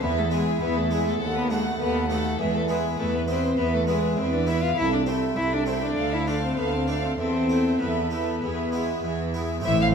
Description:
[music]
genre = classical, baroque-style concerto movement with solo episodes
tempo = 101 BPM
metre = 4/4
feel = straight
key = unclear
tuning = A4 = 440 Hz
[part]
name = rich chamber violin section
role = melody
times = 0.0-9.9 s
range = G#4 to F5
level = -31 LUFS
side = left 6 dB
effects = none
[part]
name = warm cello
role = melody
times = 0.0-9.9 s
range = E3 to F4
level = -27 LUFS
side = left 1 dB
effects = none
[part]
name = rich chamber violin section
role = second line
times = 0.0-9.9 s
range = C5 to F#5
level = -32 LUFS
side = right 5 dB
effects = none
[part]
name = dark chamber viola section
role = accompaniment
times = 0.0-9.9 s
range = E4 to B4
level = -31 LUFS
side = equal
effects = none
[part]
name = harpsichord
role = accompaniment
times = 0.0-9.9 s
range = C2 to F#4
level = -32 LUFS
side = equal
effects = none
[part]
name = warm chamber cello section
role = bass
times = 0.0-9.9 s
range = C2 to A2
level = -28 LUFS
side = right 3 dB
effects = none
[part]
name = rich chamber double bass section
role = bass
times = 9.6-9.9 s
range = A1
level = -24 LUFS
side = right 4 dB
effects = none
[sound]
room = wet recital hall reverb, RT60 1.4 s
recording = minimal, uncompressed stereo recording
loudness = -22 LUFS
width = side -6 dB against mid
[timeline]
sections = 0.0-9.6 A section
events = none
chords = 0.0 E; 1.2 B7/D#; 2.4 E; 4.8 Am/C; 6.0 Dm; 7.2 Esus4; 8.4 E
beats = | 0.02 0.61 1.21 1.80 | 2.40 2.99 3.58 4.17 | 4.77 5.37 5.97 6.57 | 7.19 7.81 8.42 9.04 | 9.65

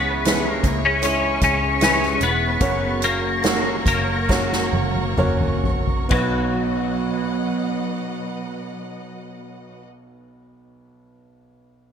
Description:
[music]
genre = pop ballad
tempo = 63-79 BPM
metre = 4/4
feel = straight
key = B major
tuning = A4 = 436 Hz
[part]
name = twelve-string electric guitar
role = melody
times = 0.0-9.8 s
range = F#3 to C#4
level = -22 LUFS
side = left 3 dB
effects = ensemble chorus
[part]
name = warm baby grand piano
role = accompaniment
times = 0.0-11.9 s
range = B1 to C#5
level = -26 LUFS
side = equal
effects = none
[part]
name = warm studio string section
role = sustained chords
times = 0.0-9.8 s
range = B2 to C#6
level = -31 LUFS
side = right 1 dB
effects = none
[part]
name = picked steel-string acoustic guitar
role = arpeggios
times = 0.0-9.9 s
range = F#2 to G#4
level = -30 LUFS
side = right 9 dB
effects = lush chorus
[part]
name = vintage muted fingered electric bass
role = bass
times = 0.0-9.8 s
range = E1 to C#2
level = -27 LUFS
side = equal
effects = none
[part]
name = soft-mallet drum kit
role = drums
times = 0.3-6.3 s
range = hi-hat, kick drum, ride cymbal, snare drum, toms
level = -23 LUFS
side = equal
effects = gated reverb
[sound]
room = light reverb, studio reverb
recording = bright 1980s-style digital production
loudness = -18 LUFS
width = side -7 dB against mid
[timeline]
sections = 0.0-6.1 A section; 6.1-9.9 B section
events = slowing down 0.0-6.1; drum fill 4.3-6.1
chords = 0.0 C#m; 2.6 F#; 6.1 B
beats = 0.25 1.02 1.81 | 2.61 3.44 4.29 5.18 | 6.11 7.07 8.02 8.97

